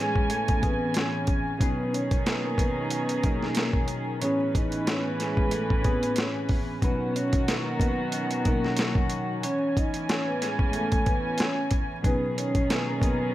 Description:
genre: hip hop, boom-bap hip-hop.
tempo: 92 BPM.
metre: 4/4.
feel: swing 55% on 16ths.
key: B major.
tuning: A4 = 440 Hz.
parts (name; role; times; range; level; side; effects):
vibraphone with soft mallets; melody; 0.0-13.3 s; G#3 to D#5; -30 LUFS; equal; high-pass filter, low-pass filter, ping-pong delay.
mellow tine electric piano; accompaniment; 0.0-13.3 s; A2 to B4; -32 LUFS; left 1 dB; medium stereo tremolo, high-pass filter, low-pass filter.
dark analog pad; sustained chords; 0.0-13.3 s; A2 to A#5; -38 LUFS; left 1 dB; chorus, high-pass filter, low-pass filter.
warm studio string section; stabs; 0.0-13.3 s; D#3 to G#5; -31 LUFS; right 1 dB; high-pass filter, low-pass filter, ping-pong delay.
dusty soul sampler-style drum kit; drums; 0.2-13.2 s; hi-hat, kick drum, snare drum; -26 LUFS; equal; overdrive.
room: little or no reverb.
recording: vinyl crackle.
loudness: -24 LUFS.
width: side -14 dB against mid.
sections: 0.0-6.8 A section; 6.8-13.3 A section.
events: none.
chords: 0.0 Amaj9; 1.6 Bmaj9; 4.2 Amaj9; 6.8 Bmaj9; 9.4 Amaj9; 12.0 Bmaj9.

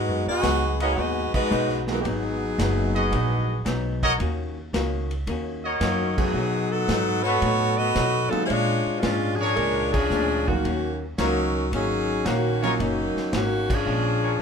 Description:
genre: jazz, big band swing.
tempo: 112 BPM.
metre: 4/4.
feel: swing 69% on 8ths.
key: Eb minor.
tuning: A4 = 440 Hz.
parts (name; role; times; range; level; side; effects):
warm saxophone section; melody; 0.0-14.4 s; Eb3 to Eb5; -24 LUFS; left 1 dB; none.
archtop guitar, miked and amplified; accompaniment; 0.0-14.4 s; Ab2 to Gb4; -32 LUFS; left 4 dB; none.
upright bass; bass; 0.0-14.4 s; Gb1 to B2; -28 LUFS; right 1 dB; none.
vintage drum kit; drums; 0.4-13.8 s; crash cymbal, hi-hat, kick drum, ride cymbal, snare drum; -31 LUFS; equal; none.
clear trumpet section; stabs; 0.8-14.3 s; D4 to D#5; -27 LUFS; equal; none.
warm concert grand piano; accompaniment; 1.9-2.0, 6.2-12.8 s; D3 to Gb4; -32 LUFS; right 6 dB; none.
room: wet club reverb, RT60 0.8 s.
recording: minimal, uncompressed stereo recording.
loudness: -21 LUFS.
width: side -6 dB against mid.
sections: 0.0-14.4 A section.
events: band accent 1.2, 6.1, 9.8, 13.6.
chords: 0.0 Abm7; 4.2 Ebm7; 6.3 B7; 8.5 Bb7#9; 10.6 Ebm7; 13.9 Bb7#9.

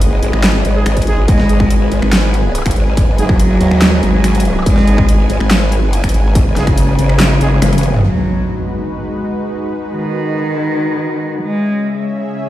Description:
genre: heavy wobble dubstep.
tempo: 142 BPM.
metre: 4/4.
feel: half-time.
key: G# minor.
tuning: A4 = 439 Hz.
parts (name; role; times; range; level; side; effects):
supersaw pad; sustained chords; 0.0-12.5 s; C#3 to G#5; -22 LUFS; equal; sidechain pumping.
growl bass; bass; 0.0-8.0 s; F#1 to D#2; -14 LUFS; equal; chorus, overdrive.
dubstep drum kit; drums; 0.0-8.0 s; finger snaps, handclaps, hi-hat, snare drum, toms; -17 LUFS; equal; low-pass filter on hats, low-pass filter on cymbals, low-pass filter on snare, low-pass filter on toms.
mellow brass ensemble; stabs; 0.8-7.6 s; G#3 to G#4; -24 LUFS; right 2 dB; ping-pong delay.
electronic kick drum; drums; 1.0-6.8 s; none; -13 LUFS; equal; distortion.
warm cello; melody; 1.3-12.0 s; C#3 to G#3; -16 LUFS; equal; ping-pong delay.
impact; sound effects; 8.0-9.7 s; none; -23 LUFS; equal; none.
room: light reverb.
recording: played on a big sound system in a bare room, stone room reverb.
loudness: -11 LUFS.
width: side -14 dB against mid.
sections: 0.0-8.0 A section; 8.0-12.5 B section.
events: drop 0.0-8.0; drum fill 7.6-8.0; band accent 7.6; impact 8.0-9.7.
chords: 0.0 G#m; 8.0 G#m7; 11.4 C#m.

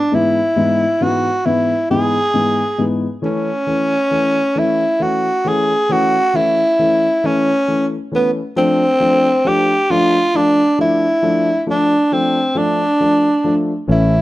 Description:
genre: six-eight pop ballad.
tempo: 45 BPM (dotted quarters).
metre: 6/8.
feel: straight.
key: unclear.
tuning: A4 = 441 Hz.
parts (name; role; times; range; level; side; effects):
growling tenor saxophone; melody; 0.0-14.2 s; B3 to G#4; -14 LUFS; equal; plate reverb.
dark upright piano; accompaniment; 0.1-14.1 s; G#2 to D4; -19 LUFS; left 2 dB; plate reverb.
sustaining fretless electric bass; bass; 13.9-14.2 s; A1; -14 LUFS; equal; none.
room: wet studio ambience, RT60 0.5 s.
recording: rough home demo mix.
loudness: -13 LUFS.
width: side -16 dB against mid.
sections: 0.0-14.2 A section.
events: none.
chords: 0.0 E/G#; 3.2 A; 8.6 F6.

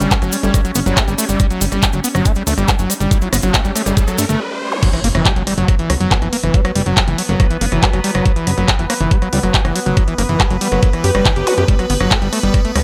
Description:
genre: psychedelic trance.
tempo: 140 BPM.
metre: 4/4.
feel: straight.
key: unclear.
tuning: A4 = 440 Hz.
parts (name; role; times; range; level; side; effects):
evolving wavetable pad; sustained chords; 0.0-12.8 s; B3 to C#5; -27 LUFS; equal; phaser, built-in reverb, sidechain pumping.
screaming distorted acid line; riff; 0.0-12.8 s; E3 to G4; -22 LUFS; equal; distortion, chorus, sidechain pumping, dub echo.
plucky analog bass; bass; 0.0-12.8 s; F#1 to G2; -21 LUFS; equal; none.
drum and bass drum kit; drums; 0.0-12.8 s; crash cymbal, handclaps, hi-hat, rim click; -22 LUFS; equal; none.
cabasa; percussion; 0.0-4.4 s; none; -26 LUFS; equal; none.
electronic kick drum; drums; 0.1-12.6 s; none; -17 LUFS; equal; none.
formant-sweep wobble bass; second line; 0.4-11.7 s; F#3 to A#3; -32 LUFS; equal; none.
riser, zap and impact; sound effects; 2.8-6.5, 11.5-11.6 s; none; -29 LUFS; equal; none.
room: light reverb.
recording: none.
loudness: -15 LUFS.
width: mono.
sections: 0.0-4.8 A section; 4.8-12.8 B section.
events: riser 2.8-4.8; break 4.4-4.8; drop 4.8-12.8; impact 4.8-6.5.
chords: 0.0 G5; 4.8 F#5; 11.7 G5.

